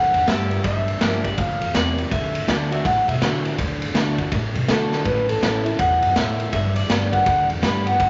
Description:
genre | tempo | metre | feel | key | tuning
rockabilly | 163 BPM | 4/4 | swing 63% on 8ths | unclear | A4 = 440 Hz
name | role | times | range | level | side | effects
electric guitar through a small old amp | melody | 0.0-8.1 s | A4 to B5 | -24 LUFS | equal | none
picked steel-string acoustic guitar | accompaniment | 0.0-8.1 s | G2 to G4 | -30 LUFS | equal | none
upright bass | bass | 0.0-8.1 s | G1 to D3 | -28 LUFS | equal | none
raw garage drum kit | drums | 0.1-8.1 s | kick drum, ride cymbal, snare drum | -25 LUFS | equal | none
room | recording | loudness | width
moderate large studio reverb, RT60 1.4 s | nothing above 7.6 kHz | -21 LUFS | mono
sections
0.0-8.1 A section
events
drum fill 4.9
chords
0.0 G; 0.6 Gm7; 2.1 D; 5.1 A; 6.5 G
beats
0.27 | 0.64 1.01 1.38 1.74 | 2.11 2.48 2.85 3.22 | 3.58 3.95 4.32 4.69 | 5.06 5.42 5.79 6.16 | 6.53 6.89 7.26 7.63 | 8.00

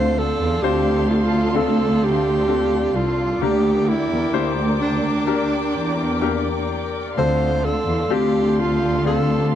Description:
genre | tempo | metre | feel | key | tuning
pop ballad | 64 BPM | 4/4 | straight | D minor | A4 = 440 Hz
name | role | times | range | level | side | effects
breathy alto saxophone | melody | 0.0-9.5 s | D4 to C5 | -22 LUFS | right 3 dB | none
clear grand piano | accompaniment | 0.0-9.6 s | D3 to C5 | -24 LUFS | left 10 dB | none
dark symphonic string section | sustained chords | 0.0-9.6 s | A4 to D6 | -28 LUFS | right 1 dB | none
dark symphonic cello section | bass | 0.0-9.6 s | C2 to E2 | -22 LUFS | equal | none
room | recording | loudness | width
studio reverb | dry, close 1970s-style studio recording | -17 LUFS | side -10 dB against mid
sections
0.0-9.6 A section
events
none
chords
0.0 Dm7; 3.4 Gm/D; 7.2 Dm7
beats
0.62 1.55 2.48 | 3.41 4.34 5.28 6.22 | 7.17 8.11 9.05

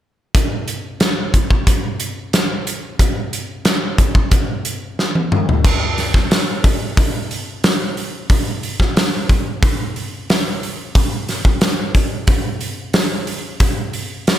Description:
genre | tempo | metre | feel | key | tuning
rock | 90 BPM | 4/4 | straight | none | none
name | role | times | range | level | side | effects
big rock drum kit | drums | 0.3-14.4 s | crash cymbal, hi-hat, kick drum, snare drum, toms | -15 LUFS | equal | none
room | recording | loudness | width
little or no reverb | none | -16 LUFS | side -12 dB against mid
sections
0.3-5.6 A section; 5.6-14.4 B section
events
drum fill 5.0-5.6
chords
none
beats
| 0.34 1.01 1.67 2.33 | 3.00 3.66 4.32 4.99 | 5.65 6.31 6.97 7.64 | 8.30 8.96 9.63 10.29 | 10.95 11.62 12.28 12.94 | 13.61 14.27

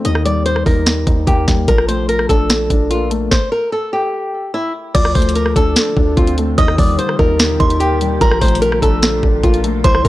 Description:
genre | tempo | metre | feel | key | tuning
hip hop, trap | 147 BPM | 4/4 | half-time | unclear | A4 = 441 Hz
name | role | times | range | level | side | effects
dark concert grand piano | accompaniment | 0.0-10.1 s | Eb3 to Eb4 | -20 LUFS | left 3 dB | none
trap drum kit | drums | 0.0-10.1 s | crash cymbal, hi-hat, kick drum, rim click, snare drum | -15 LUFS | equal | none
flamenco guitar | melody | 0.1-10.1 s | E4 to Eb5 | -18 LUFS | equal | none
hard-hitting 808-style bass | bass | 0.1-10.1 s | Bb1 to Eb2 | -19 LUFS | equal | none
delicate synth tine bell | second line | 4.9-10.1 s | Bb5 to Eb6 | -22 LUFS | right 2 dB | chorus, analog delay
granular cloud pad | sustained chords | 5.9-10.1 s | Bb2 | -28 LUFS | equal | built-in reverb
room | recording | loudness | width
digital ambience | dry, gritty hardware recording, transformer saturation, cassette tape | -12 LUFS | side -16 dB against mid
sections
0.0-4.9 A section; 4.9-10.1 B section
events
stop 3.3-4.9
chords
0.0 Eb; 1.7 Bbmaj7; 3.3 N.C.; 4.9 Dm7; 6.6 Eb; 8.2 Bbmaj7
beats
| 0.05 0.46 0.86 1.27 | 1.68 2.09 2.50 2.91 | 3.31 3.72 4.13 4.54 | 4.95 5.36 5.76 6.17 | 6.58 6.99 7.40 7.80 | 8.21 8.62 9.03 9.44 | 9.85

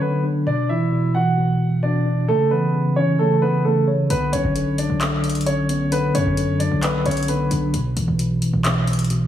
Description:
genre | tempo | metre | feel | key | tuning
hip hop, trap | 132 BPM | 4/4 | half-time | B minor | A4 = 441 Hz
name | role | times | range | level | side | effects
dark baby grand piano | melody | 0.0-7.5 s | A3 to F#5 | -22 LUFS | right 1 dB | digital delay
mellow tine electric piano | accompaniment | 0.0-9.3 s | B2 to C#5 | -20 LUFS | equal | medium stereo tremolo
hard-hitting 808-style bass | bass | 4.1-9.3 s | A1 to F#2 | -28 LUFS | equal | none
booming analog drum machine | drums | 4.1-9.2 s | handclaps, hi-hat, kick drum | -26 LUFS | equal | none
room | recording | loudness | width
light reverb | small room ambience | -17 LUFS | side -11 dB against mid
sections
0.0-9.3 A section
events
none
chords
0.5 Dadd9/B; 2.3 A; 4.1 Bm; 7.7 N.C.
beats
0.01 | 0.47 0.92 1.37 1.83 | 2.28 2.74 3.19 3.65 | 4.10 4.56 5.01 5.46 | 5.92 6.37 6.83 7.28 | 7.74 8.19 8.65 9.10

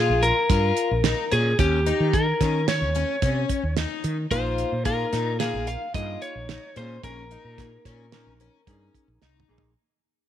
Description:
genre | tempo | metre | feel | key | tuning
progressive instrumental, band music in an uneven meter | 110 BPM | 5/4 | straight | Bb dorian | A4 = 440 Hz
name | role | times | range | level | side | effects
lightly driven lead guitar | melody | 0.0-9.2 s | G4 to F5 | -25 LUFS | equal | none
picked twelve-string acoustic guitar | arpeggios | 0.0-9.6 s | Db4 to F4 | -30 LUFS | left 9 dB | none
mellow fretless electric bass | bass | 0.0-9.7 s | Bb1 to Eb3 | -26 LUFS | equal | none
damped 70s drum kit | drums | 0.2-9.7 s | hi-hat, kick drum, snare drum, toms | -27 LUFS | right 4 dB | none
hollow-body jazz guitar | accompaniment | 4.3-9.7 s | Bb3 to Bb4 | -37 LUFS | equal | double-tracked left and right
room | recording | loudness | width
light reverb, small room ambience | 1960s-style stereo | -21 LUFS | side -10 dB against mid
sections
0.0-9.8 A section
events
fade-out 0.0-9.8; drum fill 9.2-9.8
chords
0.0 Bbm; 1.6 Eb7; 4.3 Bbm7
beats
0.50 1.05 | 1.59 2.14 2.68 3.23 3.77 | 4.32 4.86 5.41 5.95 6.50 | 7.04 7.58 8.13 8.67 9.22

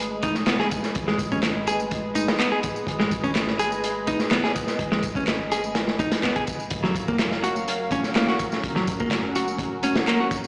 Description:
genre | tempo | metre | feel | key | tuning
breakbeat, breaks | 125 BPM | 4/4 | straight | G# dorian | A4 = 440 Hz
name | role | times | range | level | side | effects
phased analog pad | sustained chords | 0.0-10.5 s | F#3 to E#5 | -32 LUFS | equal | phaser, chorus, vintage 12-bit sampler grit, sidechain pumping
warm 808-style bass | bass | 0.0-9.9 s | D#1 to G#1 | -40 LUFS | equal | none
crunchy breakbeat drum kit | drums | 0.0-10.4 s | hi-hat, kick drum, snare drum | -29 LUFS | equal | none
electronic tambourine and handclaps | drums | 0.0-10.5 s | none | -35 LUFS | equal | overdrive
clean electric guitar | riff | 0.2-10.3 s | F#3 to G#4 | -28 LUFS | equal | tape echo
congas | percussion | 0.2-9.9 s | none | -38 LUFS | equal | none
room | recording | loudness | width
moderate lush hall reverb, RT60 2.0 s, small room ambience | played on a big sound system in a bare room, large studio reverb, small speaker sound | -24 LUFS | mono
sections
0.0-10.5 A section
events
none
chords
0.0 G#m; 6.7 F#maj7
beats
0.47 | 0.95 1.43 1.91 2.39 | 2.87 3.35 3.83 4.31 | 4.79 5.27 5.75 6.23 | 6.71 7.19 7.67 8.15 | 8.63 9.11 9.59 10.07

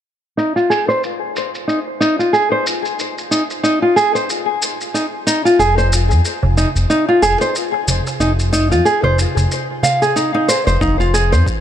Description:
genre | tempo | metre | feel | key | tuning
organic downtempo | 92 BPM | 4/4 | swing 57% on 16ths | F minor | A4 = 441 Hz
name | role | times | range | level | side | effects
nylon-string guitar | arpeggios | 0.4-11.5 s | Eb4 to F5 | -15 LUFS | equal | low-pass filter, ping-pong delay
shaker | drums | 0.4-11.6 s | none | -24 LUFS | left 1 dB | low-pass filter on perc, low-pass filter on room
smooth gliding synth bass | bass | 5.6-11.4 s | F1 to F2 | -15 LUFS | equal | none
darbuka | percussion | 5.9-11.4 s | none | -24 LUFS | right 3 dB | none
electronic kick drum | drums | 10.8-11.6 s | none | -21 LUFS | equal | none
room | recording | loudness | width
light reverb, digital ambience | none | -14 LUFS | side -10 dB against mid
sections
0.4-10.8 A section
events
none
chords
0.4 F7(no3); 10.8 Fm7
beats
| 0.38 1.03 1.68 2.33 | 2.99 3.64 4.29 4.94 | 5.59 6.25 6.90 7.55 | 8.20 8.86 9.51 10.16 | 10.81 11.46

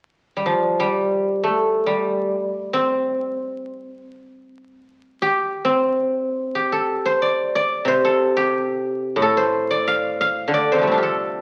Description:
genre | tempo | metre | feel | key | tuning
chinese traditional, Chinese solo plucked strings | free time | none | none | C zhi mode | A4 = 440 Hz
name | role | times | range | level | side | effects
guzheng | solo | 0.4-11.4 s | A2 to F5 | -21 LUFS | equal | none
room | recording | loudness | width
moderate large studio reverb, RT60 1.2 s | very old 78 rpm record, vinyl crackle | -21 LUFS | mono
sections
0.0-6.5 A section; 6.5-11.4 B section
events
none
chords
none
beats
free time

